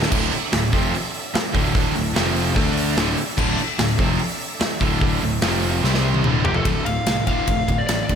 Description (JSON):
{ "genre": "hard rock", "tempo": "147 BPM", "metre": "4/4", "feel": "straight", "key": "D minor", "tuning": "A4 = 441 Hz", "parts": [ { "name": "overdriven tonewheel organ", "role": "sustained chords", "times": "0.0-8.2 s", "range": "F3 to F5", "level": "-35 LUFS", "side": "equal", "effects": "none" }, { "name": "overdriven semi-hollow guitar", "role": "riff", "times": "0.0-8.2 s", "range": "D2 to D4", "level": "-26 LUFS", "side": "left 9 dB", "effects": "slapback echo" }, { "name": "scooped high-gain guitar", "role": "riff", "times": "0.0-6.7 s", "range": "D2 to D4", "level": "-27 LUFS", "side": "right 1 dB", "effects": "distortion, slapback echo" }, { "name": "tight distorted guitar", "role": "riff", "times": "0.0-8.2 s", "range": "D2 to D4", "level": "-26 LUFS", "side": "right 10 dB", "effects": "distortion, slapback echo" }, { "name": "fuzz picked electric bass", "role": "bass", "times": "0.0-8.2 s", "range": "D1 to D2", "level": "-25 LUFS", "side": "equal", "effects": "overdrive" }, { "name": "big rock drum kit", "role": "drums", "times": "0.0-8.2 s", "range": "crash cymbal, hi-hat, kick drum, ride cymbal, snare drum, toms", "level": "-22 LUFS", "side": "equal", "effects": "none" }, { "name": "biting lead guitar", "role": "melody", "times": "6.5-8.2 s", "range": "G4 to F5", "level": "-25 LUFS", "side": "left 2 dB", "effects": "overdrive, slapback echo" } ], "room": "moderate lush hall reverb, RT60 2.2 s", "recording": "big arena sound", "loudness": "-18 LUFS", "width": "side -7 dB against mid", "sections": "0.1-6.7 A section; 6.7-8.2 B section", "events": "drum fill 5.8-6.7", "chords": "0.1 Dm; 2.2 F5; 2.6 Dm; 5.4 F5; 5.8 C5; 6.2 Dm" }